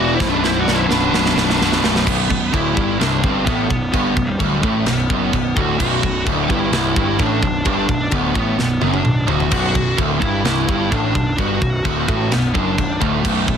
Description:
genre	heavy metal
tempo	129 BPM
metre	4/4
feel	straight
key	B phrygian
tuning	A4 = 440 Hz
part	high-gain lead guitar	melody	0.0-13.6 s	G3 to F#4	-22 LUFS	equal	distortion
part	high-gain lead guitar	second line	0.0-1.8 s	B4 to D5	-26 LUFS	right 4 dB	distortion
part	sludgy distorted guitar	riff	0.0-13.6 s	B1 to E3	-21 LUFS	left 9 dB	overdrive
part	tight distorted guitar	riff	0.0-13.6 s	B1 to E3	-22 LUFS	right 14 dB	distortion
part	fuzz picked electric bass	bass	0.0-13.6 s	B0 to A1	-24 LUFS	equal	overdrive
part	tight metal drum kit	drums	0.2-13.6 s	china cymbal, crash cymbal, kick drum, snare drum, toms	-21 LUFS	equal	none
room	light reverb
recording	dense, heavily limited modern master, lossy compression artefacts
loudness	-15 LUFS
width	side -8 dB against mid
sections	0.0-2.1 A section; 2.1-13.6 B section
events	drum fill 0.2-2.1, 8.6-9.5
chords	0.2 Bm

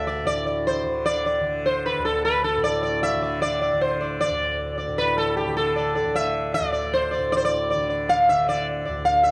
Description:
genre	indian classical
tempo	154 BPM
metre	4/4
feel	straight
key	D raga bhimpalasi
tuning	A4 = 440 Hz
part	sitar	melody	0.0-9.3 s	G4 to F5	-24 LUFS	equal	none
part	tanpura	drone	0.0-9.3 s	D2 to D3	-33 LUFS	equal	none
room	moderate recital hall reverb, RT60 1.6 s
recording	dark, warm production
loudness	-23 LUFS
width	mono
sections	0.0-9.3 A section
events	speeding up 0.0-9.3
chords	none

